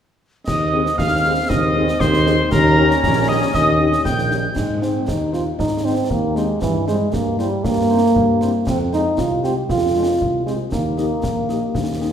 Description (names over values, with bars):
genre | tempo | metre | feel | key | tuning
military-style march for wind band | 117 BPM | 2/4 | straight | Ab major | A4 = 439 Hz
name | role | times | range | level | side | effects
mellow cornet | melody | 0.5-12.1 s | Bb4 to G5 | -23 LUFS | right 2 dB | none
wooden piccolo | second line | 0.5-4.5 s | Bb5 to G6 | -21 LUFS | left 2 dB | none
mellow trombone section | sustained chords | 0.5-4.3 s | G3 to Db4 | -25 LUFS | right 1 dB | none
mellow tuba | bass | 0.5-12.1 s | Bb1 to Ab2 | -21 LUFS | equal | none
concert snare drum, clash cymbals and concert bass drum | drums | 0.5-12.1 s | none | -26 LUFS | left 1 dB | none
dark French horn section | accompaniment | 0.7-12.1 s | G3 to Ab4 | -27 LUFS | left 4 dB | none
warm euphonium | second line | 4.6-12.1 s | E3 to G4 | -19 LUFS | right 1 dB | none
room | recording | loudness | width
wet recital hall reverb, RT60 1.5 s | recorded in a church or concert hall | -16 LUFS | side -8 dB against mid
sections
0.5-4.6 A section; 4.6-12.1 B section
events
none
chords
0.5 Ab/Eb; 2.5 Eb7; 4.6 Ab; 6.6 C7/G; 8.7 Fm; 10.7 Eb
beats
| 0.47 0.98 | 1.50 2.01 | 2.52 3.03 | 3.54 4.05 | 4.57 5.08 | 5.59 6.10 | 6.62 7.13 | 7.64 8.15 | 8.67 9.18 | 9.69 10.21 | 10.72 11.23 | 11.75